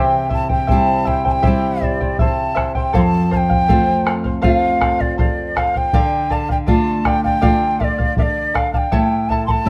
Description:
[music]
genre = andean folk, Andean ensemble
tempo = 80 BPM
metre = 4/4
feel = straight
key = D minor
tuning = A4 = 444 Hz
[part]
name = breathy large quena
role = melody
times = 0.0-9.7 s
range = D5 to C6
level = -22 LUFS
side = equal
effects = none
[part]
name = charango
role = accompaniment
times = 0.0-9.7 s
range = E4 to A5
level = -25 LUFS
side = equal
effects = none
[part]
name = nylon-string guitar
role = accompaniment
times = 0.0-9.7 s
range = F2 to F4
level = -23 LUFS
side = equal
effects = none
[part]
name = bombo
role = percussion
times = 0.3-9.7 s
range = none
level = -22 LUFS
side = equal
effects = none
[sound]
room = moderate stone room reverb, RT60 1.1 s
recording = band playing live in one room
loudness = -17 LUFS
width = mono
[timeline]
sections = 0.0-9.7 A section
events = none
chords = 0.0 C; 2.9 F; 5.9 Dm; 8.9 A

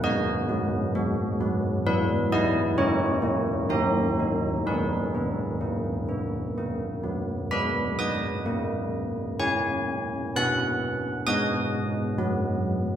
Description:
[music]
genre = classical, tune for church bells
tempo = 64 BPM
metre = 3/4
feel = straight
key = G# minor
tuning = A4 = 438 Hz
[part]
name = old church bells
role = solo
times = 0.0-13.0 s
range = D#3 to F#6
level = -24 LUFS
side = equal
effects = none
[sound]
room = wet recital hall reverb, RT60 1.6 s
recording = minimal, uncompressed stereo recording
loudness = -24 LUFS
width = side -10 dB against mid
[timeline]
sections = 0.0-7.5 A section; 7.5-13.0 A section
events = none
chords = 0.0 B; 1.9 N.C.; 2.8 A#m; 3.7 D#; 4.7 G#m; 10.4 B

